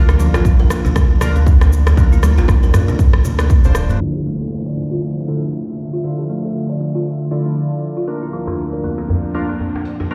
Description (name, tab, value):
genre	afro house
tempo	118 BPM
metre	4/4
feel	swing 57% on 16ths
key	D minor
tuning	A4 = 442 Hz
part	ethereal airy pad	sustained chords	0.1-10.1 s	D2 to E5	-27 LUFS	equal	ensemble chorus, built-in reverb, sidechain pumping
part	buzzing kalimba	arpeggios	0.0-10.1 s	F3 to D5	-28 LUFS	equal	sidechain pumping, low-pass filter, tape echo
part	warm analog keys	stabs	0.0-10.1 s	D3 to D5	-28 LUFS	equal	chorus, sidechain pumping, low-pass filter, tape echo
part	smooth gliding synth bass	bass	0.0-4.0 s	D1 to D2	-17 LUFS	equal	sidechain pumping
part	afro-pop drum kit	drums	0.1-10.0 s	hi-hat, rim click, shaker, toms	-25 LUFS	equal	none
part	congas	percussion	0.2-4.0 s	none	-27 LUFS	equal	none
part	djembe	percussion	0.3-3.5, 8.5-10.1 s	none	-24 LUFS	equal	none
part	electronic kick drum	drums	0.5-3.6 s	none	-14 LUFS	equal	none
part	downlifter	sound effects	4.1-8.1 s	none	-35 LUFS	equal	none
room	light reverb, digital ambience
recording	played on a big sound system in a bare room, large studio reverb, low-pass filter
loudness	-16 LUFS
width	mono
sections	0.0-4.0 A section; 4.0-10.1 B section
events	filter sweep on kalimba 4.0-10.1; filter sweep 4.0-10.1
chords	0.0 Bb; 4.0 Dm9; 8.1 Bb/D